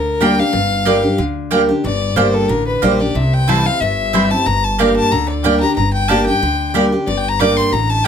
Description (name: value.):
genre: bluegrass.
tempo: 184 BPM.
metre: 4/4.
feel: swing 54% on 8ths.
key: G dorian.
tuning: A4 = 440 Hz.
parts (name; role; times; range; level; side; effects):
rich fiddle; second line; 0.0-8.1 s; A4 to D6; -18 LUFS; left 4 dB; none.
picked steel-string acoustic guitar; accompaniment; 0.0-8.1 s; G2 to G4; -17 LUFS; equal; none.
upright bass; bass; 0.0-8.1 s; G1 to D2; -22 LUFS; right 1 dB; none.
mandolin; stabs; 0.2-8.1 s; Bb3 to G5; -18 LUFS; right 5 dB; none.
room: moderate studio reverb, RT60 0.5 s.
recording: none.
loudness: -13 LUFS.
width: side -8 dB against mid.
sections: 0.5-8.1 A section.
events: fiddle solo 0.0-8.1.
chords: 0.0 Gm; 3.2 C; 4.5 Gm.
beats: 0.21 | 0.54 0.86 1.19 1.52 | 1.84 2.17 2.50 2.83 | 3.15 3.48 3.81 4.13 | 4.46 4.79 5.11 5.44 | 5.77 6.10 6.42 6.75 | 7.08 7.40 7.73 8.06.